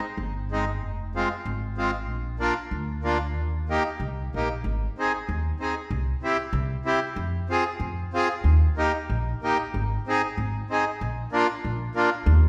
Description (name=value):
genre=alpine folk, alpine dance band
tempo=94 BPM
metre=2/4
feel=swing 54% on 8ths, rubato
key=Eb major, Ab major from 4.6 s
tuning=A4 = 441 Hz
part: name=upright bass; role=bass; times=0.2-12.5 s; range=F1 to F2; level=-28 LUFS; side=equal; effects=none
part: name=accordion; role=accompaniment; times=0.5-12.1 s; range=Ab3 to Ab4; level=-29 LUFS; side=equal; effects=none
room=moderate scoring stage reverb, RT60 1.8 s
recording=recorded in a church or concert hall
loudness=-26 LUFS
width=mono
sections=0.0-4.6 A section; 4.6-12.5 B section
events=none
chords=0.0 Ab; 0.8 Fm; 2.1 Bb; 3.3 Eb; 4.6 Ab; 5.9 C; 7.2 Fm; 8.4 Eb; 9.7 Ab; 11.0 Bb